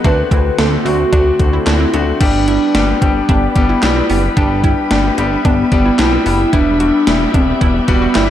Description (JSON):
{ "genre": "synth-pop", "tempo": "111 BPM", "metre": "4/4", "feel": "straight", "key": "unclear", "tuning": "A4 = 440 Hz", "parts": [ { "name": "hollow clarinet-like synth lead", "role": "melody", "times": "0.0-8.3 s", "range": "B3 to Cb5", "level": "-16 LUFS", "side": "equal", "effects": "chorus, tape echo" }, { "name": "bright concert grand piano", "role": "accompaniment", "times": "0.0-8.3 s", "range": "G3 to A4", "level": "-19 LUFS", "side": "left 5 dB", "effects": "none" }, { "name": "soft string machine", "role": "sustained chords", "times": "0.0-8.3 s", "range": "D3 to B5", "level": "-24 LUFS", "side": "equal", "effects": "ensemble chorus" }, { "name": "analog pluck", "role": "arpeggios", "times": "0.0-8.3 s", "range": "Cb4 to F#4", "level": "-25 LUFS", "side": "right 4 dB", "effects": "chorus, tape echo" }, { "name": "chorused synth bass", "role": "bass", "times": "0.0-8.3 s", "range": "E1 to D2", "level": "-18 LUFS", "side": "equal", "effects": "none" }, { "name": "gated 80s digital drum machine", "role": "drums", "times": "0.0-8.3 s", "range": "crash cymbal, handclaps, hi-hat, kick drum, snare drum", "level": "-16 LUFS", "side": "equal", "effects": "gated reverb, gated reverb snare, overdrive" } ], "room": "light reverb", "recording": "dark, warm production", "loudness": "-11 LUFS", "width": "side -11 dB against mid", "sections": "0.0-2.2 A section; 2.2-8.3 B section", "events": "none", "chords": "0.0 D7; 2.2 G; 6.5 Em7" }